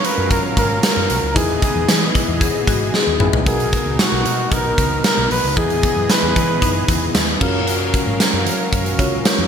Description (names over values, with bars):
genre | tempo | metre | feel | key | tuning
1980s-style pop | 114 BPM | 4/4 | straight | unclear | A4 = 440 Hz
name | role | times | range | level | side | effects
trumpet with bucket mute | melody | 0.0-7.2 s | F#4 to B4 | -21 LUFS | equal | ping-pong delay
soft electric-piano-like synth keys | accompaniment | 0.0-9.5 s | B2 to E#5 | -25 LUFS | right 1 dB | chorus
brassy analog pad | sustained chords | 0.0-9.5 s | E3 to E#5 | -26 LUFS | left 1 dB | chorus
big rock drum kit | drums | 0.0-9.4 s | crash cymbal, hi-hat, kick drum, snare drum, tambourine, toms | -17 LUFS | equal | gated reverb
vintage muted fingered electric bass | bass | 0.2-9.5 s | G#1 to F#3 | -24 LUFS | equal | none
marimba with hard mallets | second line | 2.1-3.4, 6.6-8.7 s | D#4 to G#4 | -25 LUFS | left 8 dB | ping-pong delay
room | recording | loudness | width
moderate lush hall reverb, RT60 1.6 s, studio ambience | bright 1980s-style digital production | -15 LUFS | side -7 dB against mid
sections
0.0-3.5 A section; 3.5-9.5 B section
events
drum fill 2.9-3.5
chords
0.0 F#maj7; 1.4 Emaj7; 3.5 Bmaj7; 5.6 Emaj7; 7.4 F#maj7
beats
0.31 0.83 | 1.36 1.89 2.41 2.94 | 3.46 3.99 4.52 5.04 | 5.57 6.09 6.62 7.15 | 7.67 8.20 8.73 9.25